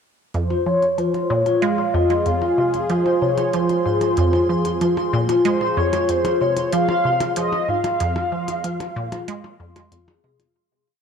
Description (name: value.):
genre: ambient, sequencer-driven space music.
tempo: 94 BPM.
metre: 4/4.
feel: straight.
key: F minor.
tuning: A4 = 439 Hz.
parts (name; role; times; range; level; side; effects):
mellow horn-like synth lead; melody; 0.3-9.9 s; C5 to F5; -22 LUFS; equal; ensemble chorus, tape echo.
sweeping resonant pad; sustained chords; 0.9-10.6 s; F4 to Ab4; -23 LUFS; right 2 dB; chorus.
resonant blip pluck; riff; 0.3-10.4 s; F2 to Ab3; -24 LUFS; right 1 dB; chorus, tape echo.
electronic hi-hat and percussion blips; percussion; 0.3-10.5 s; none; -32 LUFS; left 2 dB; overdrive, tape echo.
pulsing gated texture; texture; 0.3-10.6 s; C6; -37 LUFS; right 6 dB; chorus, built-in reverb.
vibraphone with soft mallets; arpeggios; 0.5-10.4 s; F4 to C6; -25 LUFS; left 8 dB; auto-pan, tape echo.
room: moderate plate reverb, RT60 3.3 s.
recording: cassette tape.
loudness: -18 LUFS.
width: side -7 dB against mid.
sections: 0.3-10.6 A section.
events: fade-in on synth texture 0.3-10.6; fade-in on drum 0.3-10.6; fade-out 7.2-10.6.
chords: 0.3 Fm.